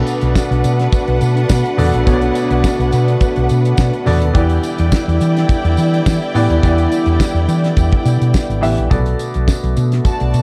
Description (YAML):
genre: disco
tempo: 105 BPM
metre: 4/4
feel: straight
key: B minor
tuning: A4 = 439 Hz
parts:
  - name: rich symphonic string section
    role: second line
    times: 0.0-10.4 s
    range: D4 to A5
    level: -24 LUFS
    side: equal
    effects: none
  - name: clear grand piano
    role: accompaniment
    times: 0.0-10.4 s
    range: B2 to E5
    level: -23 LUFS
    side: equal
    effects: none
  - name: mellow French horn section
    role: sustained chords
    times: 0.0-10.4 s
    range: D3 to F#4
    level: -25 LUFS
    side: equal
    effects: none
  - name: damped 70s drum kit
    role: drums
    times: 0.1-10.4 s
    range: hi-hat, kick drum, snare drum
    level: -19 LUFS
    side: equal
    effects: none
  - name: tambourine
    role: percussion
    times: 0.1-10.4 s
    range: none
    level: -38 LUFS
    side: equal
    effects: none
  - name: hollow-body short-scale fingered electric bass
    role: bass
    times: 0.2-10.4 s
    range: G#1 to E3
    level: -18 LUFS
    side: equal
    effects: none
room: small room ambience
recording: dark, warm production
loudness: -15 LUFS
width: mono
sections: 0.0-10.4 A section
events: none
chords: 0.0 Bm7; 4.3 Em7; 8.9 Bm7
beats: 0.36 0.93 1.50 | 2.07 2.64 3.21 3.78 | 4.35 4.92 5.49 6.06 | 6.63 7.20 7.77 8.34 | 8.91 9.48 10.05